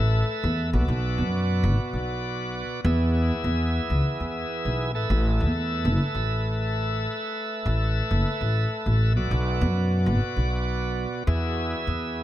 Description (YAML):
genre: progressive instrumental, band music in an uneven meter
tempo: 199 BPM (eighths)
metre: 7/8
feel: straight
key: unclear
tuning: A4 = 438 Hz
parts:
  - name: bright tonewheel organ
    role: accompaniment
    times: 0.0-12.2 s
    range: B2 to E5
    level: -28 LUFS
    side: equal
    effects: overdrive, slow rotary speaker, dub echo
  - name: upright bass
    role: bass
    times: 0.0-12.2 s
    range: F#1 to F#2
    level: -23 LUFS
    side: equal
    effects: none
room: little or no reverb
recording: echo-heavy mix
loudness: -23 LUFS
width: side -13 dB against mid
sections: 0.0-12.2 A section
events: none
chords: 0.0 Asus2; 0.7 Bm; 2.8 E; 5.0 Asus2; 9.2 Bm; 11.3 E